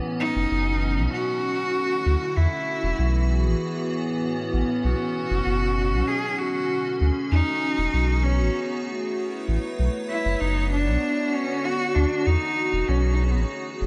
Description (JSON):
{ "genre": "IDM", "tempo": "97 BPM", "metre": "4/4", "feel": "straight", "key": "unclear", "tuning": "A4 = 441 Hz", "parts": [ { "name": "icy glass pad", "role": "sustained chords", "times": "0.0-13.9 s", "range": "A2 to C#5", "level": "-30 LUFS", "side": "equal", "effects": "chorus, built-in reverb" }, { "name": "clear cello", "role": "melody", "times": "0.2-13.5 s", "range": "B3 to G#4", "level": "-28 LUFS", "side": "equal", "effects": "diffuse ambient delay" }, { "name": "warm sub bass", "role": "bass", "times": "0.4-13.9 s", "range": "E1 to E2", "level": "-24 LUFS", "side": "equal", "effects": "none" } ], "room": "moderate plate reverb, RT60 2.9 s", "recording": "dreamy mix soaked in reverb", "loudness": "-24 LUFS", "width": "mono", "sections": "0.0-13.9 A section", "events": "none", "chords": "0.0 Badd9; 1.1 Dmaj9; 2.4 Eadd9; 3.3 Amaj9; 4.8 Badd9; 6.1 Dmaj7; 7.3 Emaj9; 8.2 Amaj9; 9.8 Bsus2; 11.0 Dmaj7; 12.3 Emaj9; 13.2 Amaj9", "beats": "0.51 1.12 1.74 | 2.36 2.98 3.60 4.22 | 4.84 5.46 6.07 6.69 | 7.31 7.93 8.55 9.17 | 9.79 10.40 11.02 11.64 | 12.26 12.88 13.50" }